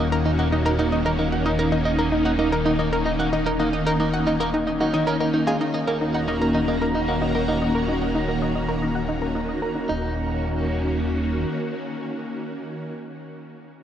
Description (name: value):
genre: ambient, sequencer-driven space music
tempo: 112 BPM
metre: 4/4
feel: straight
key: Eb minor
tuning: A4 = 441 Hz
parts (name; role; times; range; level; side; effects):
- phased string machine; sustained chords; 0.0-12.9 s; Eb3 to Gb4; -24 LUFS; equal; ensemble chorus, phaser
- clean electric guitar; arpeggios; 0.0-10.1 s; Eb3 to F4; -30 LUFS; right 2 dB; auto-pan, tape echo
- analog pluck; riff; 0.0-10.1 s; Eb4 to Gb5; -26 LUFS; equal; chorus, tape echo
- fat analog bass; bass; 0.0-11.5 s; Eb1; -28 LUFS; equal; none
- bubbling stepped-filter texture; texture; 6.1-9.9 s; Bb5; -35 LUFS; right 1 dB; chorus, built-in reverb
room: wet huge ambient reverb, RT60 7.3 s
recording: worn, warbling old tape, cassette tape, warbly pitch drift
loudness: -20 LUFS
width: side -10 dB against mid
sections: 0.0-5.6 A section; 5.6-9.9 B section; 9.9-13.8 C section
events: filter sweep on synth arpeggio sound 5.6-9.9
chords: 0.0 Ebm7